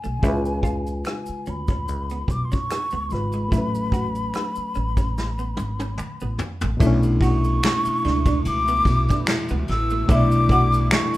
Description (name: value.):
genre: R&B, neo-soul.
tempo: 73 BPM.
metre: 4/4.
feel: swing 54% on 16ths.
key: B dorian.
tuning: A4 = 441 Hz.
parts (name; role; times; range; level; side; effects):
breathy concert flute; melody; 0.0-11.2 s; G#5 to E6; -26 LUFS; left 1 dB; none.
clean electric guitar; second line; 0.0-11.0 s; G#3 to F#4; -31 LUFS; right 4 dB; lush chorus.
barky reed electric piano; accompaniment; 0.0-11.2 s; B2 to D5; -27 LUFS; left 2 dB; none.
vintage brush drum kit; drums; 0.0-11.2 s; finger snaps, hi-hat, kick drum, ride cymbal, rim click, snare drum, toms; -24 LUFS; equal; none.
maracas and finger snaps; percussion; 0.0-11.2 s; none; -44 LUFS; equal; none.
upright bass; bass; 0.1-10.9 s; G#1 to D2; -24 LUFS; equal; none.
warm analog pad; sustained chords; 6.8-11.2 s; B2 to E4; -31 LUFS; equal; chorus.
room: moderate studio reverb, RT60 0.7 s.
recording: rough home demo mix.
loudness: -19 LUFS.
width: side -16 dB against mid.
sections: 0.0-6.8 A section; 6.8-11.2 B section.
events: drum fill 5.2-6.8.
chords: 0.2 C#7; 3.5 A69; 6.8 Bm11.